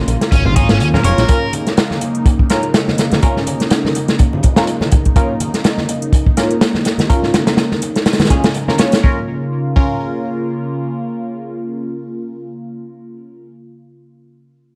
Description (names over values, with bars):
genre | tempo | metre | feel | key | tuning
breakbeat, breaks | 124 BPM | 4/4 | swing 56% on 16ths | Bb minor | A4 = 438 Hz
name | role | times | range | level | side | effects
phased analog pad | sustained chords | 0.0-12.8 s | Db3 to F4 | -24 LUFS | equal | phaser, chorus, sidechain pumping
band-passed chord stab | stabs | 0.0-13.6 s | Db4 to Db5 | -24 LUFS | equal | phaser, delay
fat analog bass | bass | 0.0-1.3 s | F1 to Eb2 | -18 LUFS | equal | none
crunchy breakbeat drum kit | drums | 0.1-9.9 s | hi-hat, kick drum, snare drum | -16 LUFS | equal | none
electronic hi-hat | drums | 0.1-9.0 s | none | -31 LUFS | equal | none
cranked stack guitar | riff | 0.3-1.5 s | Db4 to Bb4 | -24 LUFS | equal | overdrive, tube saturation, delay
congas | percussion | 0.5-8.8 s | none | -26 LUFS | equal | none
room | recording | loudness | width
light reverb, small room ambience | dark, warm production | -15 LUFS | mono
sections
0.0-9.0 A section; 9.0-12.9 B section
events
filter sweep on synth stab 0.0-9.0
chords
0.0 Bbm